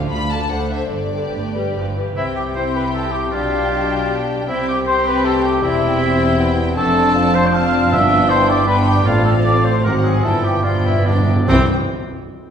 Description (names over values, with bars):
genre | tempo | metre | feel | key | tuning
quick classical-period movement for symphony orchestra | 138-160 BPM | 3/4 | rubato | C major | A4 = 440 Hz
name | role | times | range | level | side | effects
dark studio violin section | second line | 0.0-11.7 s | B3 to C5 | -26 LUFS | left 3 dB | none
warm studio viola section | accompaniment | 0.0-11.7 s | D3 to D4 | -25 LUFS | equal | none
warm studio cello section | bass | 0.0-11.7 s | D2 to C3 | -22 LUFS | right 2 dB | none
warm symphonic double bass section | bass | 0.0-11.7 s | E1 to D2 | -24 LUFS | right 2 dB | none
dark studio violin section | melody | 0.1-11.7 s | D5 to B5 | -28 LUFS | left 4 dB | none
mellow large flute ensemble | second line | 2.2-11.7 s | C5 to F6 | -24 LUFS | left 3 dB | none
warm oboe | second line | 2.2-11.7 s | C4 to G5 | -20 LUFS | right 1 dB | none
mellow bassoon | accompaniment | 2.2-11.7 s | C3 to F4 | -25 LUFS | right 1 dB | none
mellow French horn section | sustained chords | 2.2-11.7 s | B3 to G4 | -24 LUFS | left 4 dB | none
timpani | percussion | 7.9-11.7 s | G2 to C3 | -23 LUFS | equal | none
room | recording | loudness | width
wet scoring stage reverb, RT60 1.6 s | heard from further back in the room | -14 LUFS | side -8 dB against mid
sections
0.0-2.2 A section; 2.2-11.5 B section; 11.5-12.5 C section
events
timpani fill 10.2-11.5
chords
0.0 Dm; 0.5 D7; 0.9 G; 2.2 C; 3.3 G7/B; 4.5 C5; 5.6 C/E; 6.8 Dm7/F; 7.9 G; 9.1 F/A; 9.9 Ab7; 10.2 G7; 11.5 C